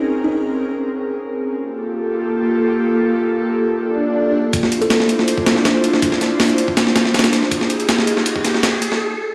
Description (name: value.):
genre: drum and bass, jungle.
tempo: 161 BPM.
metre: 4/4.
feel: straight.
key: D minor.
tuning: A4 = 440 Hz.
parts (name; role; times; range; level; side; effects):
airy breathy pad; sustained chords; 0.0-9.0 s; Bb3 to C5; -21 LUFS; equal; chorus, vintage 12-bit sampler grit.
buzzing kalimba; melody; 0.2-0.6, 4.8-6.2 s; Eb4 to C5; -26 LUFS; equal; dub echo.
swell and riser; sound effects; 3.9-9.0 s; none; -27 LUFS; equal; none.
breakbeat sampler-style drum kit; drums; 4.5-9.0 s; hi-hat, kick drum, snare drum; -18 LUFS; equal; high-pass filter on hats, high-pass filter on kick, high-pass filter on snare, high-pass filter on room.
room: wet echo chamber reverb, RT60 1.4 s.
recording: played on a big sound system in a bare room, stone room reverb, lossy compression artefacts.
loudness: -18 LUFS.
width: mono.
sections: 0.0-4.5 A section; 4.5-9.3 B section.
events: swell 3.9-4.5; build-up 4.5-9.3; riser 4.5-9.0; break 9.0-9.3.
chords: 0.0 Bbm9; 1.6 Gm9; 4.5 Dm9; 7.5 Fm9.